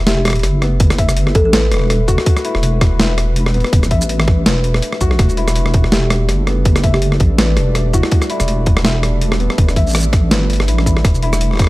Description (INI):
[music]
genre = half-time drum and bass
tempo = 164 BPM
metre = 4/4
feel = swing 56% on 16ths, half-time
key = E minor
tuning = A4 = 440 Hz
[part]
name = dark analog pad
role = sustained chords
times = 0.0-11.7 s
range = G3 to D5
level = -26 LUFS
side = right 2 dB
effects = chorus, sidechain pumping
[part]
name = felt-muted upright piano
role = arpeggios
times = 0.0-11.7 s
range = B3 to E5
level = -24 LUFS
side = left 3 dB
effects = vintage 12-bit sampler grit, tape echo
[part]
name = deep soft wobble bass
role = bass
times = 0.0-11.7 s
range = E1 to B1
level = -16 LUFS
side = equal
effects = chorus
[part]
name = kalimba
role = melody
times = 0.1-1.5, 5.9-8.1 s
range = E4 to A4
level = -23 LUFS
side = equal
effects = analog delay
[part]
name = boom bap sampler-style drum kit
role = drums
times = 0.1-11.7 s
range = hi-hat, rim click, shaker, snare drum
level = -18 LUFS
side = equal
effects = none
[part]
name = electronic kick drum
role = drums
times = 0.8-11.7 s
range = none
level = -13 LUFS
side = equal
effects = overdrive
[sound]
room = little or no reverb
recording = dry, gritty hardware recording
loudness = -12 LUFS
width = side -19 dB against mid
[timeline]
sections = 0.0-11.7 A section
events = none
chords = 0.0 Emadd9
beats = 0.07 0.43 | 0.80 1.17 1.53 1.90 | 2.26 2.63 3.00 3.36 | 3.73 4.09 4.46 4.82 | 5.19 5.56 5.92 6.29 | 6.65 7.02 7.38 7.75 | 8.12 8.48 8.85 9.21 | 9.58 9.95 10.31 10.68 | 11.04 11.41